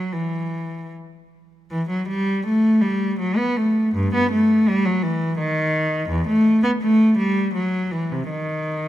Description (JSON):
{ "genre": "classical, baroque-style suite movement for unaccompanied cello", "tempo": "82 BPM", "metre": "3/4", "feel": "uneven beats, rubato", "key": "unclear", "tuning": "A4 = 440 Hz", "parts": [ { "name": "rich cello", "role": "solo", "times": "0.0-8.9 s", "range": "E2 to B3", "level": "-18 LUFS", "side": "equal", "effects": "none" } ], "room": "wet concert hall reverb, RT60 2.4 s", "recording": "close, detailed microphones", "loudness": "-18 LUFS", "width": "side -13 dB against mid", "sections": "0.0-1.7 A section; 1.7-8.9 B section", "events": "none", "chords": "none" }